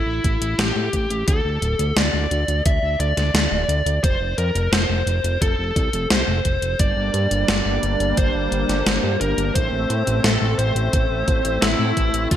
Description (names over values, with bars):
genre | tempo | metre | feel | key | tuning
synthwave | 87 BPM | 4/4 | straight | unclear | A4 = 440 Hz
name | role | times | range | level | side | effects
biting lead guitar | melody | 0.0-12.4 s | E4 to E5 | -23 LUFS | equal | overdrive, ping-pong delay
fat analog bass | bass | 0.0-12.4 s | D1 to A2 | -23 LUFS | equal | sidechain pumping
electronic kick drum | drums | 0.2-12.4 s | none | -21 LUFS | equal | none
gated 80s digital drum machine | drums | 0.2-12.4 s | hi-hat, snare drum | -22 LUFS | left 1 dB | gated reverb, gated reverb snare
brassy analog pad | sustained chords | 6.8-12.4 s | D3 to E5 | -26 LUFS | equal | chorus, sidechain pumping
room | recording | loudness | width
light reverb, digital ambience | bright 1980s-style digital production | -18 LUFS | side -10 dB against mid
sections
0.0-12.4 A section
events
none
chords
0.0 A5; 1.3 D5; 4.0 F; 6.8 Gm; 9.6 Am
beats
0.59 | 1.28 1.97 2.66 3.35 | 4.04 4.73 5.42 6.11 | 6.80 7.49 8.18 8.87 | 9.55 10.24 10.93 11.62 | 12.31